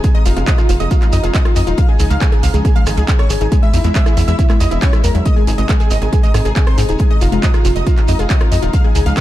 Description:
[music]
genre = uplifting trance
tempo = 138 BPM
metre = 4/4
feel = straight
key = unclear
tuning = A4 = 444 Hz
[part]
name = wide unison pluck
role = melody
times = 0.0-9.2 s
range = E4 to F5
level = -22 LUFS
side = moving between left 7 dB and right 8 dB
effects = auto-pan, sidechain pumping, digital delay
[part]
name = plucky unison lead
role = second line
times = 0.0-9.2 s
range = E5 to F6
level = -28 LUFS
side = right 1 dB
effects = sidechain pumping, digital delay
[part]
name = dark symphonic string section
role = sustained chords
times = 0.0-9.2 s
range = B2 to E4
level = -25 LUFS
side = left 1 dB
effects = sidechain pumping
[part]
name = wide unison pluck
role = arpeggios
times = 0.0-9.2 s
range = Gb3 to Ab4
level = -25 LUFS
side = left 3 dB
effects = sidechain pumping, digital delay
[part]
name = electronic kick drum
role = drums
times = 0.0-9.2 s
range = none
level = -13 LUFS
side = equal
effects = none
[part]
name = techno drum kit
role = drums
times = 0.0-9.2 s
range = handclaps, hi-hat, rim click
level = -25 LUFS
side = right 1 dB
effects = sidechain pumping on hats, sidechain pumping on cymbals
[part]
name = shekere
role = percussion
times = 0.0-9.2 s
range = none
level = -30 LUFS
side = right 4 dB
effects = none
[part]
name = tight sequencer bass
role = bass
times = 0.3-9.1 s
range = Eb1 to Ab2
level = -16 LUFS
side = equal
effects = sidechain pumping
[sound]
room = little or no reverb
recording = dark, warm production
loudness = -11 LUFS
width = side -14 dB against mid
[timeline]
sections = 0.0-9.2 A section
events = none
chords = 0.0 Fm7; 1.8 Dbadd9; 3.5 E; 5.3 Ab; 7.0 Fm7

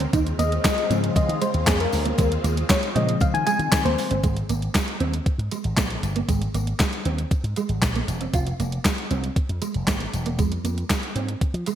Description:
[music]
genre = early-eighties boogie funk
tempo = 117 BPM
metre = 4/4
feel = straight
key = Ab major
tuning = A4 = 440 Hz
[part]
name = phased string machine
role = sustained chords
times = 0.0-4.2 s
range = Db3 to F4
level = -31 LUFS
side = equal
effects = ensemble chorus, phaser
[part]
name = mellow electric guitar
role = riff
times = 0.0-11.8 s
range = Ab3 to F4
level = -30 LUFS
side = right 6 dB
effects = ensemble chorus
[part]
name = slap bass with an envelope filter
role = bass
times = 0.0-11.6 s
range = Fb1 to F3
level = -25 LUFS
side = equal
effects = none
[part]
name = clean 12-bit digital drum machine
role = drums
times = 0.0-11.8 s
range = handclaps, hi-hat, kick drum, snare drum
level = -23 LUFS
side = equal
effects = gated reverb
[part]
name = tambourine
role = percussion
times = 0.1-11.8 s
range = none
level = -39 LUFS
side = left 7 dB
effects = none
[part]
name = mellow FM electric piano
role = accompaniment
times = 0.4-4.2 s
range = Db3 to Ab5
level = -24 LUFS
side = left 4 dB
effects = chorus
[sound]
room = moderate lush hall reverb, RT60 1.5 s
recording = bright 1980s-style digital production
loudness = -21 LUFS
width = side -10 dB against mid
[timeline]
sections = 0.0-4.2 A section; 4.2-11.8 B section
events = FM electric piano solo 0.0-4.2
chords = 0.1 Eb13sus4; 4.2 Absus2; 8.3 Fm

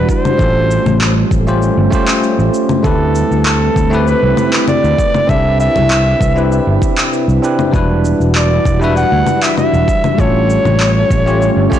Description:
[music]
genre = sunset chillout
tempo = 98 BPM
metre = 4/4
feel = straight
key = unclear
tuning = A4 = 440 Hz
[part]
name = warm flugelhorn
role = melody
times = 0.0-11.8 s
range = A4 to F#5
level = -17 LUFS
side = equal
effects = tape echo
[part]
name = bell-like tine electric piano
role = accompaniment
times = 0.0-11.8 s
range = G3 to C#5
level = -17 LUFS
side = equal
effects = auto-pan, ping-pong delay
[part]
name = soft string machine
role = sustained chords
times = 0.0-11.8 s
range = C3 to B4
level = -20 LUFS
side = equal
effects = ensemble chorus
[part]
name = fingered electric bass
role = bass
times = 0.0-11.7 s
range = E1 to D2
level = -14 LUFS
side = equal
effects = tube saturation
[part]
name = electronic kick drum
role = drums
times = 0.1-11.8 s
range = none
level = -16 LUFS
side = equal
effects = studio reverb
[part]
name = electronic shaker, congas and handclaps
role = drums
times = 0.1-11.8 s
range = none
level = -18 LUFS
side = left 2 dB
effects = studio reverb
[sound]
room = light reverb, digital ambience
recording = blown-out, overdriven recording, overdrive, nothing above 10.7 kHz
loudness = -10 LUFS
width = side -10 dB against mid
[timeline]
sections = 0.0-11.8 A section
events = none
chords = 0.4 A7alt; 2.8 D13sus4; 5.3 Cmaj7; 7.7 Em9; 10.2 Aaug7

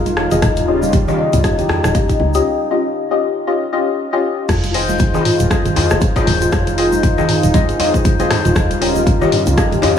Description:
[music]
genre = afro house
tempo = 118 BPM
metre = 4/4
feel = swing 57% on 16ths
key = F minor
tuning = A4 = 440 Hz
[part]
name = warm analog pad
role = sustained chords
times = 0.0-10.0 s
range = Db3 to F4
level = -23 LUFS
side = right 1 dB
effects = lush chorus, sidechain pumping
[part]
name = deep mellow chord stab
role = stabs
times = 0.0-10.0 s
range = C4 to Eb5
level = -19 LUFS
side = left 4 dB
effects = chorus, sidechain pumping, digital delay
[part]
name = woody FM bass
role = bass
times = 0.0-9.6 s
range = Eb1 to Db2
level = -20 LUFS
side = equal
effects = sidechain pumping
[part]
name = handpan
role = arpeggios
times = 0.1-9.8 s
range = Db4 to Eb5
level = -21 LUFS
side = left 1 dB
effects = vintage 12-bit sampler grit, sidechain pumping, digital delay
[part]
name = afro-pop drum kit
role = drums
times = 0.1-9.9 s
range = crash cymbal, hi-hat, rim click, toms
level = -21 LUFS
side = equal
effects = none
[part]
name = congas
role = percussion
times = 0.1-9.8 s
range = none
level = -25 LUFS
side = right 4 dB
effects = none
[part]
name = egg shaker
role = percussion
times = 0.1-9.8 s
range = none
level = -35 LUFS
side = right 4 dB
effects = none
[part]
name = djembe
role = percussion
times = 0.2-10.0 s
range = none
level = -24 LUFS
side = left 2 dB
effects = none
[part]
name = electronic kick drum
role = drums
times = 0.4-9.7 s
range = none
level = -17 LUFS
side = equal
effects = none
[sound]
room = light reverb, studio reverb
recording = none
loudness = -13 LUFS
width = side -8 dB against mid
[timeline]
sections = 0.0-4.5 A section; 4.5-10.0 B section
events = break 2.5-4.5; drop 4.5-10.0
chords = 0.4 Eb9; 4.5 Fm7; 8.6 Eb9

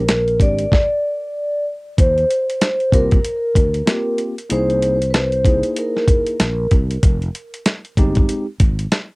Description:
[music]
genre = hip hop, jazz-hop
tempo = 95 BPM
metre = 4/4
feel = swing 61% on 16ths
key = Eb major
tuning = A4 = 440 Hz
[part]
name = vibraphone with soft mallets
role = melody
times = 0.0-6.7 s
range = Bb4 to D5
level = -19 LUFS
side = equal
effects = cassette tape, tape echo
[part]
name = sustaining fretless electric bass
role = bass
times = 0.0-8.9 s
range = F1 to Eb2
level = -21 LUFS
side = equal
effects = transformer saturation
[part]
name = dusty soul sampler-style drum kit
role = drums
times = 0.1-9.1 s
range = hi-hat, kick drum, snare drum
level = -16 LUFS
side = equal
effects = cassette tape
[part]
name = tine electric piano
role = accompaniment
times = 0.4-8.5 s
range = Ab3 to G#4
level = -23 LUFS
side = equal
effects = medium stereo tremolo, cassette tape
[sound]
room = little or no reverb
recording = home recording on cassette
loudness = -15 LUFS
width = side -27 dB against mid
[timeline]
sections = 0.0-2.0 A section; 2.0-9.2 B section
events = stop 0.7-2.0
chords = 0.0 Bb13; 2.0 Eb6 (rootless); 4.5 C7alt; 7.0 Fm7

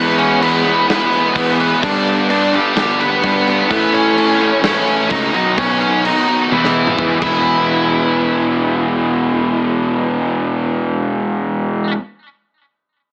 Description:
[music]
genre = quiet-loud alternative rock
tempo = 128 BPM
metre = 4/4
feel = straight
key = E major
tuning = A4 = 440 Hz
[part]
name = biting lead guitar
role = melody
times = 0.0-11.9 s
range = E3 to D#5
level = -20 LUFS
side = equal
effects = overdrive
[part]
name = crunchy overdriven guitar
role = riff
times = 0.0-12.0 s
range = G2 to F#4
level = -24 LUFS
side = equal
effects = none
[part]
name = fuzz guitar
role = riff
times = 0.0-12.0 s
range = G2 to G#4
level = -22 LUFS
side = equal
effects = distortion
[part]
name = fuzz fingered electric bass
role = bass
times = 0.0-11.9 s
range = E1 to A2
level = -22 LUFS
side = equal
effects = overdrive
[part]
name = big rock drum kit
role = drums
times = 0.2-7.3 s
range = crash cymbal, kick drum, snare drum, toms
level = -24 LUFS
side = equal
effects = none
[sound]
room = moderate studio reverb, RT60 0.6 s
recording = AM radio sound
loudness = -15 LUFS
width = mono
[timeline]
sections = 0.0-7.5 A section; 7.5-11.2 B section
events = drum fill 6.5-7.5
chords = 0.0 E; 1.8 G; 3.7 A; 5.3 Badd9; 6.5 E

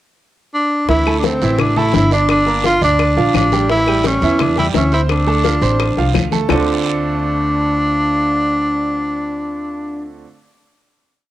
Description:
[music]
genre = latin, salsa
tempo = 171 BPM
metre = 4/4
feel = straight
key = D minor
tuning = A4 = 440 Hz
[part]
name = clear tenor saxophone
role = melody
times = 0.5-10.1 s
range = C4 to F4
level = -16 LUFS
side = equal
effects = cassette tape
[part]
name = bright grand piano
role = accompaniment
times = 0.9-10.2 s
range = D3 to F6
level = -20 LUFS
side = right 6 dB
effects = cassette tape
[part]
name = upright bass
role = bass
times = 0.9-10.2 s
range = G1 to E2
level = -19 LUFS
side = equal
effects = none
[part]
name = bongos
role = percussion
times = 0.9-6.6 s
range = none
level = -23 LUFS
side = left 8 dB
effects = none
[part]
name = congas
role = percussion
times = 0.9-6.6 s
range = none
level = -25 LUFS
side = left 7 dB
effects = none
[part]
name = guiro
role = percussion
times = 0.9-6.6 s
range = none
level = -29 LUFS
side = right 8 dB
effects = none
[part]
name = claves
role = percussion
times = 1.1-6.6 s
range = none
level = -27 LUFS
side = left 11 dB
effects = none
[sound]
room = light reverb, studio reverb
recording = home recording on cassette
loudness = -13 LUFS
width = side -14 dB against mid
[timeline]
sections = 0.0-0.9 pickup bar; 0.9-6.5 A section; 6.5-9.3 final chord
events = none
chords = 0.0 N.C.; 0.9 Dsus2; 2.3 Gm7; 3.7 A7; 5.1 Dm7

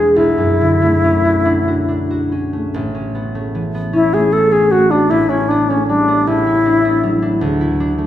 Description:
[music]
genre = classical, impressionist duo for alto flute and harp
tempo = 46-53 BPM (dotted quarters)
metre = 6/8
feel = rubato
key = A major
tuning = A4 = 440 Hz
[part]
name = alto flute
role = melody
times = 0.0-7.4 s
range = C#4 to A4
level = -14 LUFS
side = left 1 dB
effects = none
[part]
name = concert harp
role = accompaniment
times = 0.0-8.1 s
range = A1 to F#4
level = -17 LUFS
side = right 1 dB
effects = none
[sound]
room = wet recital hall reverb, RT60 1.6 s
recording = recorded in a church or concert hall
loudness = -13 LUFS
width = side -12 dB against mid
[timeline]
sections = 0.0-2.7 A section; 2.7-8.1 B section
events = none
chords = 0.2 Bm11; 2.7 Aadd9; 5.1 G69/A; 6.3 E9sus4/A; 7.4 Dadd9

